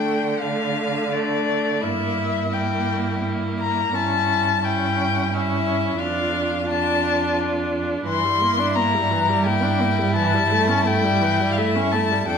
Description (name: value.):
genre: classical, slow romantic movement for string quartet.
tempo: 86 BPM.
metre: 3/4.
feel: rubato.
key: D minor.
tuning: A4 = 439 Hz.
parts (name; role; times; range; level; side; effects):
rich violin; melody; 0.0-12.4 s; D5 to C6; -22 LUFS; left 7 dB; none.
rich violin; second line; 0.0-12.4 s; D4 to A4; -28 LUFS; left 3 dB; none.
rich viola; accompaniment; 0.0-12.4 s; E3 to D4; -25 LUFS; right 2 dB; none.
rich cello; bass; 0.0-12.4 s; F2 to D3; -25 LUFS; right 5 dB; none.
room: wet recital hall reverb, RT60 1.4 s.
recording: none.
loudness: -19 LUFS.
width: side -6 dB against mid.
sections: 0.0-12.4 A section.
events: none.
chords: 0.0 Dm; 1.8 Edim/G; 3.9 A7/G; 6.0 Dm/F; 8.1 Em7b5/G; 10.2 A7/G.